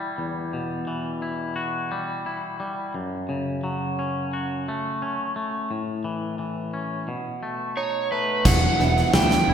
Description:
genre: post-rock.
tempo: 87 BPM.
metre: 4/4.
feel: straight.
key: E dorian.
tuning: A4 = 440 Hz.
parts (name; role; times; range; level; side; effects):
twangy electric guitar; arpeggios; 0.0-9.5 s; E2 to F#4; -26 LUFS; left 1 dB; none.
overdriven slide guitar; melody; 7.8-9.5 s; B4 to G5; -23 LUFS; right 4 dB; none.
growling fingered electric bass; bass; 8.5-9.5 s; E1 to D2; -23 LUFS; right 1 dB; overdrive.
huge arena drum kit; drums; 8.5-9.5 s; crash cymbal, kick drum, snare drum; -20 LUFS; equal; none.
vibraphone with soft mallets; arpeggios; 8.8-9.5 s; E5; -34 LUFS; right 7 dB; none.
room: wet recital hall reverb, RT60 1.7 s.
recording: recorded in a church or concert hall.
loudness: -23 LUFS.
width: side -8 dB against mid.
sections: 0.0-8.5 A section; 8.5-9.5 B section.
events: none.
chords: 0.0 Emadd9; 2.9 F#m; 5.7 A; 7.1 B7; 8.5 Emadd9.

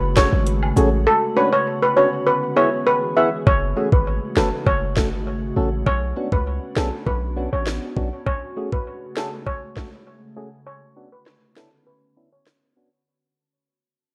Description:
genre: dancehall.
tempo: 100 BPM.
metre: 4/4.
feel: straight.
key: F# minor.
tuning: A4 = 440 Hz.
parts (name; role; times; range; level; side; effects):
glassy FM pad; sustained chords; 0.0-13.0 s; C#3 to F#4; -32 LUFS; equal; ensemble chorus, built-in reverb, sidechain pumping, low-pass filter.
warm 808-style bass; bass; 0.0-8.1 s; F#1 to C#2; -25 LUFS; equal; none.
steel pan; melody; 0.2-12.4 s; A4 to E5; -23 LUFS; equal; low-pass filter, delay.
percussive organ stab; accompaniment; 0.2-12.9 s; A3 to F#5; -25 LUFS; equal; chorus, low-pass filter.
island pop drum kit; drums; 0.2-12.6 s; hi-hat, kick drum, rim click, snare drum; -25 LUFS; equal; none.
cabasa and woodblock; percussion; 0.2-0.9 s; none; -32 LUFS; equal; none.
room: light reverb, digital ambience.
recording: worn, warbling old tape, cassette tape, warbly pitch drift.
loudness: -20 LUFS.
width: mono.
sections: 0.0-3.5 A section; 3.5-13.1 B section.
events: drums muted 1.1-3.5; fade-out 3.5-13.1; filter sweep 3.5-13.1.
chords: 0.0 F#madd9; 1.1 Bmadd9; 2.3 E; 3.5 F#madd9; 5.9 Bmadd9; 8.3 F#madd9; 10.7 Bmadd9.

